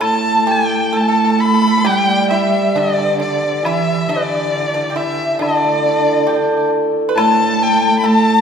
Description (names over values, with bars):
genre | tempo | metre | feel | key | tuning
chinese traditional, Chinese chamber ensemble | 68 BPM | 4/4 | rubato | unclear | A4 = 443 Hz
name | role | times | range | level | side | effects
rich erhu | melody | 0.0-8.4 s | D5 to B5 | -18 LUFS | left 1 dB | none
dark cello | second line | 0.0-8.4 s | D3 to A3 | -19 LUFS | right 4 dB | none
mellow large dizi | second line | 0.0-8.4 s | B4 to B5 | -20 LUFS | left 4 dB | none
pipa | second line | 0.0-8.4 s | D4 to B4 | -24 LUFS | right 3 dB | none
hammered dulcimer | accompaniment | 0.0-8.4 s | A2 to A4 | -20 LUFS | equal | none
woodblock | percussion | 0.0-7.4 s | none | -27 LUFS | left 4 dB | none
room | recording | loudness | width
wet recital hall reverb, RT60 1.8 s | recorded in a church or concert hall | -13 LUFS | side -7 dB against mid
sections
0.0-8.4 A section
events
none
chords
none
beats
| 0.02 0.94 1.85 2.75 | 3.65 4.54 5.43 6.30 | 7.17 8.05